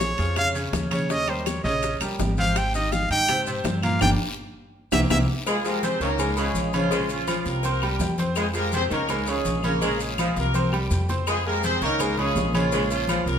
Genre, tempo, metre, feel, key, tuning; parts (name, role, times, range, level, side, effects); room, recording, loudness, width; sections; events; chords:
latin, salsa; 165 BPM; 4/4; straight; F minor; A4 = 439 Hz
clear trumpet; melody; 0.0-5.2 s; C5 to G5; -25 LUFS; right 1 dB
bright concert grand piano; accompaniment; 0.0-13.4 s; Bb2 to Db6; -28 LUFS; right 1 dB
upright bass; bass; 0.0-13.4 s; G1 to Ab2; -28 LUFS; equal
bongos and cowbell; percussion; 0.0-13.4 s; -35 LUFS; left 8 dB
congas; percussion; 0.0-13.4 s; -30 LUFS; left 2 dB
guiro; percussion; 0.0-13.4 s; -40 LUFS; left 4 dB
maracas; percussion; 0.0-13.4 s; -38 LUFS; left 5 dB
timbales and agogo bells; percussion; 0.0-13.3 s; -34 LUFS; right 6 dB
claves; percussion; 0.4-13.3 s; -37 LUFS; left 6 dB
warm horn section; melody; 5.5-13.4 s; F3 to C5; -27 LUFS; equal
clear saxophone section; second line; 5.5-13.3 s; Db3 to Ab3; -30 LUFS; left 1 dB
wet large studio reverb, RT60 1.3 s; minimal, uncompressed stereo recording; -21 LUFS; side -8 dB against mid
0.0-5.5 A section; 5.5-13.4 B section
trumpet solo 0.0-5.5; band accent 4.0-5.5; drum fill 4.6-5.5, 10.2-11.3
0.0 Bbm7 (rootless); 1.1 Eb7; 2.6 Abmaj9; 4.0 Gm; 4.7 C7; 5.5 Fm; 6.2 Dbsus2; 6.9 Bbm7; 7.6 C5; 8.4 Fm; 9.1 Dbsus2; 9.8 Bbm7; 10.5 C5; 11.3 Fm; 12.0 Dbsus2; 12.7 Bbm7